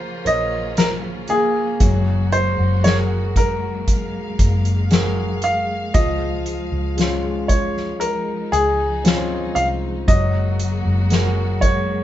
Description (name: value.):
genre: pop ballad.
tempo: 58 BPM.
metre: 4/4.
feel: straight.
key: unclear.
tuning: A4 = 441 Hz.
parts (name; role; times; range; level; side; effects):
clear baby grand piano; melody; 0.0-12.0 s; Ab4 to F5; -22 LUFS; equal; none.
clear grand piano; accompaniment; 0.0-12.0 s; F3 to Db5; -26 LUFS; equal; none.
rich studio string section; sustained chords; 0.0-12.0 s; Db3 to F5; -29 LUFS; left 1 dB; none.
vintage muted fingered electric bass; bass; 0.0-12.0 s; Gb1 to Db2; -22 LUFS; left 1 dB; none.
soft-mallet drum kit; drums; 0.3-11.9 s; hi-hat, kick drum, snare drum; -19 LUFS; equal; none.
room: light reverb.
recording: band playing live in one room, nothing above 7.8 kHz.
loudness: -17 LUFS.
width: side -12 dB against mid.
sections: 0.0-12.0 A section.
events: none.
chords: 0.0 Bbmadd9; 1.8 Gbadd9; 6.0 Dbmaj7; 10.1 Gbadd9.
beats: 0.78 | 1.81 2.85 3.88 4.92 | 5.95 6.98 8.02 9.05 | 10.09 11.12.